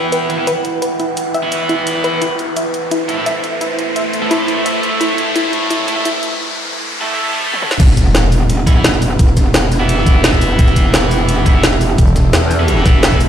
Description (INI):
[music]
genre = dark technical drum and bass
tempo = 172 BPM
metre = 4/4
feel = straight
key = E minor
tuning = A4 = 440 Hz
[part]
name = deep dark ambient pad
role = sustained chords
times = 0.0-13.3 s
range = A3 to G5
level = -22 LUFS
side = right 1 dB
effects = chorus, built-in reverb, sidechain pumping
[part]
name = tight distorted guitar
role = stabs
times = 0.0-13.2 s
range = E3 to A4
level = -20 LUFS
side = right 1 dB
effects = distortion, dub echo
[part]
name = riser and impact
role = sound effects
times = 0.0-9.2 s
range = none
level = -20 LUFS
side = equal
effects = none
[part]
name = wide unison pluck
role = arpeggios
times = 0.1-6.1 s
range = E4 to E5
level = -21 LUFS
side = left 1 dB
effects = cassette tape, sidechain pumping, dub echo
[part]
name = drum and bass drum kit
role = drums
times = 0.1-13.3 s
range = crash cymbal, hi-hat, shaker, snare drum, toms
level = -18 LUFS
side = equal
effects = overdrive, small room reverb
[part]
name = metallic wobble bass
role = bass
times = 7.8-13.3 s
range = E1 to E2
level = -15 LUFS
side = equal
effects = chorus, tube saturation
[part]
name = breakbeat sampler-style drum kit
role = drums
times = 7.8-13.3 s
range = hi-hat, snare drum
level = -23 LUFS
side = right 1 dB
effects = high-pass filter on snare, small room reverb, high-pass filter on hats, high-pass filter on room
[part]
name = electronic kick drum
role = drums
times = 7.8-13.2 s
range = none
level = -11 LUFS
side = equal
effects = overdrive, small room reverb
[part]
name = growling FM bass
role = bass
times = 12.0-12.3 s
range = E1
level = -13 LUFS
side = equal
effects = none
[sound]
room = light reverb, digital ambience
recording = played on a big sound system in a bare room, stone room reverb, high-pass filter, lossy compression artefacts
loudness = -12 LUFS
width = side -9 dB against mid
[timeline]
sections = 0.0-7.8 A section; 7.8-13.3 B section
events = build-up 0.0-7.8; riser 0.0-7.8; filter sweep on synth arpeggio sound 0.0-7.8; filter sweep 0.0-7.8; break 6.4-7.8; drum fill 7.5; drop 7.8-13.3; impact 7.8-9.2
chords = 0.0 Em; 2.2 Am; 7.8 Em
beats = 0.12 0.47 | 0.82 1.17 1.52 1.87 | 2.22 2.56 2.91 3.26 | 3.61 3.96 4.31 4.66 | 5.01 5.36 5.71 6.05 | 6.40 6.75 7.10 7.45 | 7.80 8.15 8.50 8.85 | 9.19 9.54 9.89 10.24 | 10.59 10.94 11.29 11.63 | 11.98 12.33 12.68 13.03